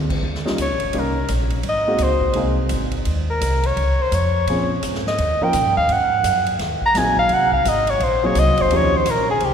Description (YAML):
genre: jazz, small-group swing and bop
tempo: 170 BPM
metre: 4/4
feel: swing 63% on 8ths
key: unclear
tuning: A4 = 440 Hz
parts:
  - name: upright bass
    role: bass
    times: 0.0-9.5 s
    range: Gb1 to Bb2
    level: -22 LUFS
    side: equal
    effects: none
  - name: swinging big-band drum kit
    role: drums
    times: 0.1-9.5 s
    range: crash cymbal, hi-hat, kick drum, ride cymbal, snare drum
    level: -29 LUFS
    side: equal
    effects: none
  - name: warm baby grand piano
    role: accompaniment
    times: 0.5-8.9 s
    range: F3 to Bb4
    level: -25 LUFS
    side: equal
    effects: none
  - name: mellow soprano saxophone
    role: melody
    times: 0.6-9.5 s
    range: G4 to Bb5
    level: -19 LUFS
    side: equal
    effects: none
room: wet cathedral reverb, RT60 4.2 s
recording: recorded in a church or concert hall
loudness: -16 LUFS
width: side -7 dB against mid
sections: 0.2-9.5 A section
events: soprano saxophone solo 0.2-9.5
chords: 0.2 Eb7; 1.7 Ab9; 3.1 Ebsus2; 4.5 Bbm7; 5.2 Eb9; 5.9 Ab9; 8.7 Eb9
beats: | 0.24 0.59 0.95 1.30 | 1.65 2.01 2.36 2.71 | 3.07 3.42 3.78 4.13 | 4.48 4.84 5.19 5.54 | 5.90 6.25 6.60 6.96 | 7.31 7.66 8.02 8.37 | 8.72 9.07 9.43